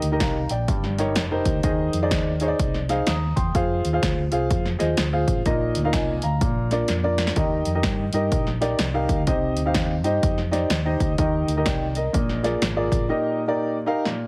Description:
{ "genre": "uptempo gospel", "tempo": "126 BPM", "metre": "4/4", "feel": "swing 62% on 8ths", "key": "Eb major", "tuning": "A4 = 441 Hz", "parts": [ { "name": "clear upright piano", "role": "accompaniment", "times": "0.0-14.3 s", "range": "G2 to Eb6", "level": "-26 LUFS", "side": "equal", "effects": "none" }, { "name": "hollow-body short-scale fingered electric bass", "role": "bass", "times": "0.0-13.1 s", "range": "F1 to G2", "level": "-28 LUFS", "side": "equal", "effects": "none" }, { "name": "punchy analog drum machine", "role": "drums", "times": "0.0-14.2 s", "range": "hi-hat, kick drum, snare drum", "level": "-28 LUFS", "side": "equal", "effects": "none" } ], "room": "light reverb, digital ambience", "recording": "heavily compressed radio sound", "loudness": "-23 LUFS", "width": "mono", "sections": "0.0-14.3 A section", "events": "drum fill 6.9-7.4, 14.0", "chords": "0.0 Eb; 0.7 Eb7/G; 1.6 Ab/Eb; 3.5 Fm; 5.5 Bbsus4; 6.4 Bb; 7.4 Eb; 9.3 Cm; 11.2 Eb; 12.1 Bb7; 13.1 Eb/Bb" }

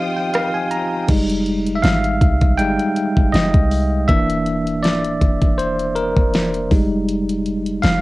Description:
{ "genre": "contemporary R&B", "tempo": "80 BPM", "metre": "4/4", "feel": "swing 54% on 16ths", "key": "F dorian", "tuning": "A4 = 441 Hz", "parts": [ { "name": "bell-like tine electric piano", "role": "accompaniment", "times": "0.0-8.0 s", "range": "E3 to Bb5", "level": "-18 LUFS", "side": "equal", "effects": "fast stereo tremolo, cassette tape" }, { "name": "bright studio string section", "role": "sustained chords", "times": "0.0-1.1 s", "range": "F4 to Eb6", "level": "-29 LUFS", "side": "equal", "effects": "cassette tape" }, { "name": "smooth R&B drum kit", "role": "drums", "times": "0.3-8.0 s", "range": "crash cymbal, hi-hat, kick drum, rim click, snare drum", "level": "-18 LUFS", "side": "equal", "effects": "cassette tape" }, { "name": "clean 808-style bass", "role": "bass", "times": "1.1-8.0 s", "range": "D1 to C2", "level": "-22 LUFS", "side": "equal", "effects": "none" } ], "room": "little or no reverb", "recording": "home recording on cassette", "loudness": "-15 LUFS", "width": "side -19 dB against mid", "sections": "0.0-1.1 A section; 1.1-8.0 B section", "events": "break 0.0-1.1; tine electric piano fill 0.0-1.1; tine electric piano solo 1.1-8.0", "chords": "0.0 Eb69; 1.1 Fm9; 4.1 C9/D; 6.7 Fm9" }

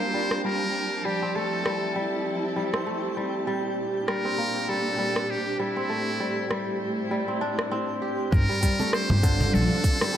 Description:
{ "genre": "organic downtempo", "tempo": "99 BPM", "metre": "4/4", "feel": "swing 56% on 16ths", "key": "G dorian", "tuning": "A4 = 440 Hz", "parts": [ { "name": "trumpet with metal mute", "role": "melody", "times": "0.0-10.2 s", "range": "E4 to C5", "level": "-30 LUFS", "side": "equal", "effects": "tape echo" }, { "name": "warm studio string section", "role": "sustained chords", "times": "0.0-10.2 s", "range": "A2 to A5", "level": "-32 LUFS", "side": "equal", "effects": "sidechain pumping" }, { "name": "kora", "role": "arpeggios", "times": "0.0-10.2 s", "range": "D3 to G4", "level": "-29 LUFS", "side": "equal", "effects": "vintage 12-bit sampler grit, digital delay" }, { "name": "twinkling granular texture", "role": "texture", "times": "0.0-10.2 s", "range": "C4 to G5", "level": "-37 LUFS", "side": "right 3 dB", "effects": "built-in reverb" }, { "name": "organic electronic drum kit", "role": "drums", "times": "0.3-10.1 s", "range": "cabasa, congas, hi-hat, rim click", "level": "-30 LUFS", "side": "equal", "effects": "none" }, { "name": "upright bass", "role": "bass", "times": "8.3-9.7 s", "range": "G1 to Bb1", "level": "-24 LUFS", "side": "equal", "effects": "tube saturation, sidechain pumping" }, { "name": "electronic kick drum", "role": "drums", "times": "8.3-10.0 s", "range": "none", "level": "-22 LUFS", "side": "equal", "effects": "none" }, { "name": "cajon", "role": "percussion", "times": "8.8-9.5 s", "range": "none", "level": "-27 LUFS", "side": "right 1 dB", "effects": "none" } ], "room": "moderate lush hall reverb, RT60 3.0 s", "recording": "none", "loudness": "-24 LUFS", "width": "side -10 dB against mid", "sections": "0.0-8.3 A section; 8.3-10.2 B section", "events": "none", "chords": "0.0 Gm11; 1.1 Fmaj9; 3.5 Bb6; 5.9 Am7; 8.3 Gm11" }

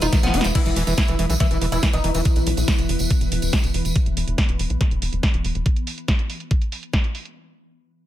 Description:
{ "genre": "psychedelic trance", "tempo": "141 BPM", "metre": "4/4", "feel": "straight", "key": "E major", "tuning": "A4 = 441 Hz", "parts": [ { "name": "oud", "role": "melody", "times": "0.0-2.1 s", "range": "B3 to E4", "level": "-27 LUFS", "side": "left 1 dB", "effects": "phaser, sidechain pumping, ping-pong delay" }, { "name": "swarming drone", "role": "sustained chords", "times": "0.0-5.7 s", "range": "E3 to B3", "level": "-31 LUFS", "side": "equal", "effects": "built-in reverb, sidechain pumping" }, { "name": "screaming distorted acid line", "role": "riff", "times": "0.0-2.2 s", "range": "D#3 to F4", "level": "-27 LUFS", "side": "moving between left 3 dB and right 3 dB", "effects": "distortion, chorus, auto-pan, sidechain pumping, ping-pong delay" }, { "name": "tight sequencer bass", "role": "bass", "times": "0.0-5.6 s", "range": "E1 to B1", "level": "-23 LUFS", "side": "equal", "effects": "none" }, { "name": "techno drum kit", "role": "drums", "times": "0.0-7.3 s", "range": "crash cymbal, hi-hat, snare drum", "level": "-26 LUFS", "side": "equal", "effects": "low-pass filter on snare, low-pass filter on hats, low-pass filter on cymbals, low-pass filter on room" }, { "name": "tambourine", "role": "percussion", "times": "0.0-3.9 s", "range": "none", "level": "-32 LUFS", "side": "right 2 dB", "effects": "none" }, { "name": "granular cloud pad", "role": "texture", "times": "0.0-4.0 s", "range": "E4 to E5", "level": "-31 LUFS", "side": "left 1 dB", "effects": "built-in reverb, sidechain pumping" }, { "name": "electronic kick drum", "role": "drums", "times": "0.1-7.0 s", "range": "none", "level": "-20 LUFS", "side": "equal", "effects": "overdrive" } ], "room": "digital ambience", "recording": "none", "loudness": "-18 LUFS", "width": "side -13 dB against mid", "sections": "0.6-7.4 A section", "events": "drum fill 0.1-0.6; filter sweep on analog synth bass 0.6-5.7; filter sweep on synth drone 0.6-5.7", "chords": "0.0 E5" }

